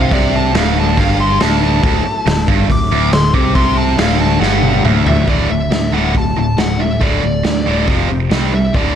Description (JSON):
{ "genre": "hard rock", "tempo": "139 BPM", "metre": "4/4", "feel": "straight", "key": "D mixolydian", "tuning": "A4 = 439 Hz", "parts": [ { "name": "smooth overdriven lead guitar", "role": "melody", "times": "0.0-9.0 s", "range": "D5 to D6", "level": "-20 LUFS", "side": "left 1 dB", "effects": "slapback echo" }, { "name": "overdriven tonewheel organ", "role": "sustained chords", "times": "0.0-9.0 s", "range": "F3 to D5", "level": "-28 LUFS", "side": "left 1 dB", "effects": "none" }, { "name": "distorted electric guitar", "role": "riff", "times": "0.0-8.9 s", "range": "D2 to C4", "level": "-19 LUFS", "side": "left 10 dB", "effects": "distortion" }, { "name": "tight distorted guitar", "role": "riff", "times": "0.0-9.0 s", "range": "D2 to C4", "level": "-18 LUFS", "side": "right 11 dB", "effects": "distortion" }, { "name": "modern bright picked electric bass", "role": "bass", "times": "0.0-8.9 s", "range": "D1 to D2", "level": "-18 LUFS", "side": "equal", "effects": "none" }, { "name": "raw garage drum kit", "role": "drums", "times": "0.1-8.8 s", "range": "hi-hat, kick drum, snare drum, toms", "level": "-17 LUFS", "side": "equal", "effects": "none" } ], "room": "light reverb, small room ambience", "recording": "none", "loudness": "-11 LUFS", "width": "side -9 dB against mid", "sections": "0.0-5.3 A section; 5.3-9.0 B section", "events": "lead electric guitar solo 0.0-5.3; drum fill 4.4-5.3", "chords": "0.0 D; 7.9 F5; 8.3 C5" }